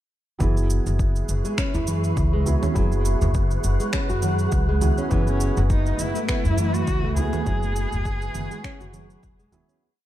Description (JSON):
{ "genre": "organic downtempo", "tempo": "102 BPM", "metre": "4/4", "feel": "swing 56% on 16ths", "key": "unclear", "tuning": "A4 = 440 Hz", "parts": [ { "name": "felt-muted upright piano", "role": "accompaniment", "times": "0.4-9.8 s", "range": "F#3 to G#4", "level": "-32 LUFS", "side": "right 5 dB", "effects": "sidechain pumping, digital delay" }, { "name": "granular cloud pad", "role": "sustained chords", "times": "1.2-9.8 s", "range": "A3 to C#6", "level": "-32 LUFS", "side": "equal", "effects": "built-in reverb, sidechain pumping" }, { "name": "nylon-string guitar", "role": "arpeggios", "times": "0.4-9.8 s", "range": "E3 to F#4", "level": "-30 LUFS", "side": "equal", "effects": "low-pass filter, digital delay" }, { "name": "upright bass", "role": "bass", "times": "0.4-9.6 s", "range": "E1 to F#2", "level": "-23 LUFS", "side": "equal", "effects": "sidechain pumping" }, { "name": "electronic cabasa, finger snaps and congas", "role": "drums", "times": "0.4-9.8 s", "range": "none", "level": "-32 LUFS", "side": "right 4 dB", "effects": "overdrive, studio ambience" }, { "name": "electronic kick drum", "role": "drums", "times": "0.4-9.4 s", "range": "none", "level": "-26 LUFS", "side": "equal", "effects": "overdrive, studio ambience" }, { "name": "wind-like tuned noise texture", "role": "texture", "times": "1.0-9.8 s", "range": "B4", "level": "-36 LUFS", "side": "left 1 dB", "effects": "built-in reverb" }, { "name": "udu", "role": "percussion", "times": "1.7-9.7 s", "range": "none", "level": "-28 LUFS", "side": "right 1 dB", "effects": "none" }, { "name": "dark cello", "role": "melody", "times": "5.1-9.5 s", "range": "C#4 to G#4", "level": "-30 LUFS", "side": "equal", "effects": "tape echo" } ], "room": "small room ambience", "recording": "dark, warm production", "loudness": "-20 LUFS", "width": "side -13 dB against mid", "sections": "0.4-9.8 groove", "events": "fade-out 6.7-9.8", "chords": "0.4 C#m/F#; 5.1 Asus2/F#; 7.5 F#sus2" }